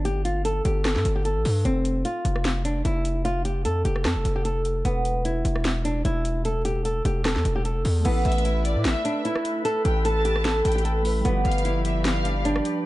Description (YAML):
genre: hip hop, trap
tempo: 150 BPM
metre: 4/4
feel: half-time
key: unclear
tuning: A4 = 439 Hz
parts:
  - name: flamenco guitar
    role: melody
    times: 0.0-12.8 s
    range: B3 to A4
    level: -26 LUFS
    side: equal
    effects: low-pass filter
  - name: distorted 808-style bass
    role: bass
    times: 0.0-12.6 s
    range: E1 to A2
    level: -24 LUFS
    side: equal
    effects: distortion
  - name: trap drum kit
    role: drums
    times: 0.1-12.7 s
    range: crash cymbal, hi-hat, rim click, snare drum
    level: -30 LUFS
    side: equal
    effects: none
  - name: glassy digital keys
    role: accompaniment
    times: 8.0-12.9 s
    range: F3 to B4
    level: -33 LUFS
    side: right 1 dB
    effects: chorus, low-pass filter
  - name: flute section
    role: sustained chords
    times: 8.0-12.9 s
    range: G4 to B5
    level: -34 LUFS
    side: left 2 dB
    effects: none
  - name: warm studio violin section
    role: second line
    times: 8.3-12.4 s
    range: D5 to A5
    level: -33 LUFS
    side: equal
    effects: digital delay
room: studio ambience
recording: dark, warm production, vinyl crackle, nothing above 10.7 kHz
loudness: -22 LUFS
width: side -17 dB against mid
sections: 0.0-8.1 A section; 8.1-12.9 B section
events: none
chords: 0.0 N.C.; 1.6 F5; 4.8 E5; 8.1 Asus2; 11.2 G7